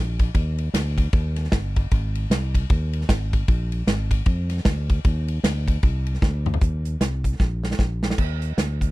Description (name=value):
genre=uptempo gospel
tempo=153 BPM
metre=4/4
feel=swing 61% on 8ths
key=unclear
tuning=A4 = 440 Hz
part: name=fingered electric bass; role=bass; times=0.0-8.9 s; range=G1 to F2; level=-24 LUFS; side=equal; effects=none
part: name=natural country drum kit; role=drums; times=0.2-8.9 s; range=crash cymbal, hi-hat, kick drum, ride cymbal, snare drum, toms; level=-22 LUFS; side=equal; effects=none
room=little or no reverb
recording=dry, close 1970s-style studio recording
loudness=-20 LUFS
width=side -19 dB against mid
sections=0.0-6.6 A section; 6.6-8.2 B section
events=drum fill 6.2-6.6, 7.4-8.2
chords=none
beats=| 0.35 0.74 1.13 1.52 | 1.92 2.31 2.70 3.09 | 3.48 3.87 4.26 4.66 | 5.05 5.44 5.83 6.22 | 6.61 7.00 7.40 7.79 | 8.18 8.57